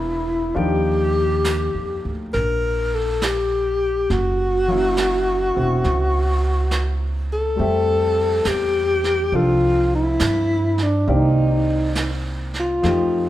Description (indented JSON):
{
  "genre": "jazz ballad",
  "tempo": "68 BPM",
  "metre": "4/4",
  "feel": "swing 68% on 8ths",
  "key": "F major",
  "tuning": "A4 = 441 Hz",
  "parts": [
    { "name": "breathy alto saxophone", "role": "melody", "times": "0.0-13.3 s", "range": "D4 to Bb4", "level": "-20 LUFS", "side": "left 1 dB", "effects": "none" },
    { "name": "clear grand piano", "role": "accompaniment", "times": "0.0-13.3 s", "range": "Eb3 to E5", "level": "-27 LUFS", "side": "left 2 dB", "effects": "none" },
    { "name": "upright bass", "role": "bass", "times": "0.0-13.3 s", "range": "E1 to G2", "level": "-22 LUFS", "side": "right 1 dB", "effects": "none" },
    { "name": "vintage brush drum kit", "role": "drums", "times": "0.5-13.3 s", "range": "brushed snare drum, hi-hat, snare drum", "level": "-30 LUFS", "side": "right 3 dB", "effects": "none" }
  ],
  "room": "light reverb",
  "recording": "none",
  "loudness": "-17 LUFS",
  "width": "side -14 dB against mid",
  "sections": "0.0-13.3 A section",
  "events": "none",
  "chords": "0.0 E7#11; 0.5 Ebmaj9; 4.1 Gb7; 7.6 Fmaj9; 11.1 Cm7",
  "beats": "| 0.54 1.43 2.32 3.21 | 4.09 4.97 5.84 6.71 | 7.58 8.46 9.33 10.20 | 11.08 11.96 12.84"
}